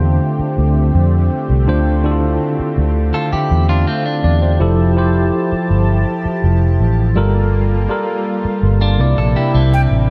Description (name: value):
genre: R&B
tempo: 82 BPM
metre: 4/4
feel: straight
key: D minor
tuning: A4 = 440 Hz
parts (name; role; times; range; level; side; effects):
- tine electric piano; accompaniment; 0.0-10.1 s; C3 to F5; -20 LUFS; equal; none
- warm analog pad; sustained chords; 0.0-10.1 s; C3 to A5; -26 LUFS; equal; chorus
- vintage muted fingered electric bass; bass; 0.0-10.1 s; F1 to F2; -16 LUFS; equal; none
- clean electric guitar; arpeggios; 3.1-10.1 s; A3 to A4; -25 LUFS; equal; lush chorus
- breathy concert flute; melody; 9.7-9.8 s; G5; -24 LUFS; equal; none
room: moderate lush hall reverb, RT60 2.5 s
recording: dreamy mix soaked in reverb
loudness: -15 LUFS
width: mono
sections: 0.0-10.1 A section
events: none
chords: 0.0 Dm7; 4.6 Fmaj9; 7.2 Gm9; 9.0 C9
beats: 0.22 0.95 | 1.68 2.41 3.14 3.87 | 4.61 5.34 6.07 6.80 | 7.53 8.27 9.00 9.73